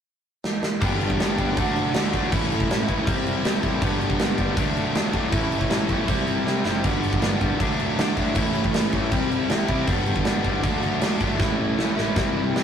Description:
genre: punk rock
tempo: 159 BPM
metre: 4/4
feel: straight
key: unclear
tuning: A4 = 440 Hz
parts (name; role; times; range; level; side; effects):
- big rock drum kit; drums; 0.4-12.6 s; crash cymbal, kick drum, snare drum; -24 LUFS; equal; none
- biting overdriven guitar; riff; 0.8-12.6 s; G2 to G4; -27 LUFS; equal; none
- distorted electric guitar; riff; 0.8-12.6 s; G2 to E4; -28 LUFS; left 4 dB; distortion
- distorted electric guitar; riff; 0.8-12.6 s; G2 to D4; -31 LUFS; right 4 dB; distortion
- fuzz picked electric bass; bass; 0.8-12.6 s; F#1 to C3; -31 LUFS; equal; overdrive
room: moderate booth ambience, RT60 0.2 s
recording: rough rehearsal-room recording, tube saturation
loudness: -20 LUFS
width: side -8 dB against mid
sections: 0.8-12.6 A section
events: drum fill 0.4-0.8, 6.5-6.8, 11.4-12.6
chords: 0.0 N.C.; 0.8 G; 1.6 D; 2.3 A; 3.1 C; 3.8 G; 4.6 D; 5.3 A; 6.1 C; 6.8 G; 7.6 D; 8.4 A; 9.1 C; 9.9 G; 10.6 D; 11.4 A

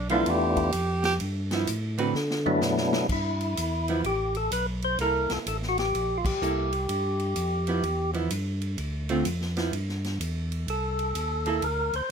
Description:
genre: soul jazz organ trio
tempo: 127 BPM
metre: 4/4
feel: swing 65% on 8ths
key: G mixolydian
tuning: A4 = 437 Hz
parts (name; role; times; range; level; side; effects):
- breathy tenor saxophone; melody; 0.0-1.1 s; F4 to G4; -28 LUFS; right 4 dB; none
- tonewheel organ; bass; 0.0-12.0 s; A1 to D3; -30 LUFS; equal; overdrive, stopped rotary speaker
- percussive tonewheel organ; melody; 0.1-12.1 s; F#3 to C5; -27 LUFS; left 1 dB; slow rotary speaker, overdrive
- archtop guitar, miked and amplified; accompaniment; 0.1-11.6 s; D3 to B4; -29 LUFS; right 5 dB; none
- swinging big-band drum kit; drums; 0.1-12.0 s; crash cymbal, hi-hat, kick drum, ride cymbal, snare drum, toms; -34 LUFS; right 1 dB; none
room: light reverb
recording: none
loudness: -25 LUFS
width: side -6 dB against mid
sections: 0.0-3.1 A section; 3.1-12.1 B section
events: tenor saxophone solo 0.0-3.1; drum fill 2.2-3.1; band accent 6.2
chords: 0.0 G13; 2.2 D69; 3.1 G69; 5.0 C6; 6.9 G6; 8.8 Dm7; 9.7 Em; 10.7 C7sus2

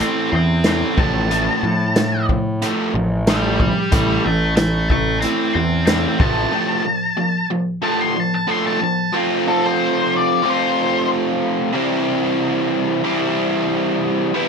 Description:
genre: classic rock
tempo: 92 BPM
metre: 4/4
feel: straight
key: unclear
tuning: A4 = 442 Hz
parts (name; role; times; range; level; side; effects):
- octave-fuzz lead guitar; melody; 0.0-11.1 s; A4 to C6; -20 LUFS; left 1 dB; distortion, slapback echo
- biting overdriven guitar; riff; 0.0-14.5 s; A2 to F4; -19 LUFS; right 1 dB; none
- fuzz picked electric bass; bass; 0.3-6.5 s; A1 to A2; -21 LUFS; equal; overdrive
- vintage drum kit; drums; 0.6-6.4 s; hi-hat, kick drum, snare drum; -20 LUFS; equal; none
room: light reverb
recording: none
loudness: -16 LUFS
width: side -5 dB against mid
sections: 0.0-9.1 A section; 9.1-14.5 B section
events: lead electric guitar solo 0.0-9.1; break 6.5-9.1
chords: 0.0 A5; 1.0 F/A; 3.9 A5; 6.2 F/A; 9.1 F; 11.7 C

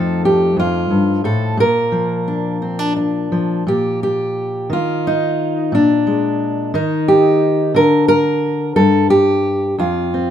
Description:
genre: folk, solo fingerstyle acoustic guitar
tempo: 59 BPM (dotted quarters)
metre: 6/8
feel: rubato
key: Bb major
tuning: A4 = 440 Hz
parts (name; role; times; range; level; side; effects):
- fingerpicked steel-string acoustic guitar; solo; 0.0-10.3 s; F2 to Bb4; -14 LUFS; equal; none
room: light reverb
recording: minimal, uncompressed stereo recording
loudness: -14 LUFS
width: side -10 dB against mid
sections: 0.0-3.7 A section; 3.7-10.3 B section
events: none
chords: 0.0 F7; 1.6 Bb; 3.7 N.C.; 4.7 Eb5; 5.7 Bb7; 6.7 N.C.; 9.8 F5

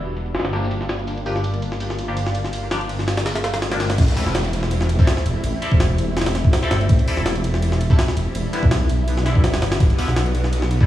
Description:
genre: drum and bass, jungle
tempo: 165 BPM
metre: 4/4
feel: swing 53% on 16ths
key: unclear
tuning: A4 = 440 Hz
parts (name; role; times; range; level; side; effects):
- soft string machine; sustained chords; 0.0-10.9 s; G3 to F#4; -28 LUFS; equal; phaser, ensemble chorus
- detuned saw bass; bass; 0.0-10.8 s; E1 to B1; -22 LUFS; equal; none
- crunchy breakbeat drum kit; drums; 0.2-3.9 s; hi-hat, snare drum; -40 LUFS; right 2 dB; high-pass filter on hats, high-pass filter on snare, high-pass filter on room
- jungle sampler-style drum kit; drums; 0.2-10.9 s; crash cymbal, hi-hat, kick drum, ride cymbal, snare drum; -20 LUFS; equal; none
- band-passed chord stab; stabs; 0.5-10.9 s; D3 to A4; -29 LUFS; left 2 dB; phaser, dub echo
- riser and downlifter; sound effects; 2.6-6.9 s; none; -32 LUFS; equal; none
room: light reverb, digital ambience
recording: played on a big sound system in a bare room, stone room reverb, vinyl crackle, low-pass filter, small room ambience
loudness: -17 LUFS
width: side -13 dB against mid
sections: 0.0-4.0 A section; 4.0-10.9 B section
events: filter sweep on synth stab 0.0-4.0; filter sweep 0.0-4.0; drop 4.0-10.9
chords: 0.3 Gm7; 4.0 Am7; 8.3 Em7

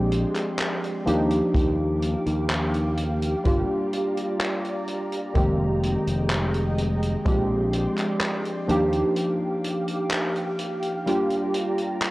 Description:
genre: vaporwave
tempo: 63 BPM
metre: 4/4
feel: straight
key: Eb major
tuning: A4 = 438 Hz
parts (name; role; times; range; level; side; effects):
- warbly lo-fi synth keys; accompaniment; 0.0-12.1 s; Eb3 to G4; -25 LUFS; equal; analog chorus, tape echo
- soft string machine; sustained chords; 0.0-12.1 s; Ab3 to D6; -32 LUFS; equal; ensemble chorus
- modern bright fingered electric bass; bass; 0.0-9.0 s; F1 to Eb2; -26 LUFS; equal; none
- vintage drum kit; drums; 0.1-12.1 s; handclaps, hi-hat; -31 LUFS; equal; none
- kick drum; drums; 1.5-7.5 s; none; -24 LUFS; equal; none
room: light reverb, small room ambience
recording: worn, warbling old tape, cassette tape, warbly pitch drift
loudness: -22 LUFS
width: side -19 dB against mid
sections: 0.0-12.1 A section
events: break 9.2-12.1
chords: 0.0 Bb13; 1.1 Ebmaj9; 3.5 Gm7; 5.4 Fm11; 7.3 Bb13; 8.7 Ebmaj9; 11.1 Gm7

